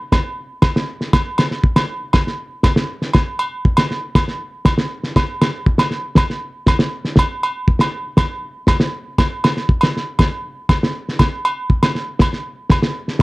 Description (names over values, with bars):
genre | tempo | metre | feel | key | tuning
highlife | 119 BPM | 4/4 | straight | none | none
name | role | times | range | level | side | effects
cloth-damped thuddy drum kit | drums | 0.1-13.2 s | kick drum, snare drum | -14 LUFS | equal | none
agogo bells | percussion | 0.1-12.8 s | none | -22 LUFS | right 1 dB | none
room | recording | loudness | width
little or no reverb | dry, close 1970s-style studio recording | -15 LUFS | side -21 dB against mid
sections
0.6-13.2 A section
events
none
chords
none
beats
0.12 | 0.63 1.13 1.64 2.14 | 2.64 3.15 3.65 4.15 | 4.66 5.16 5.66 6.17 | 6.67 7.17 7.67 8.18 | 8.68 9.18 9.68 10.19 | 10.69 11.19 11.70 12.20 | 12.70 13.20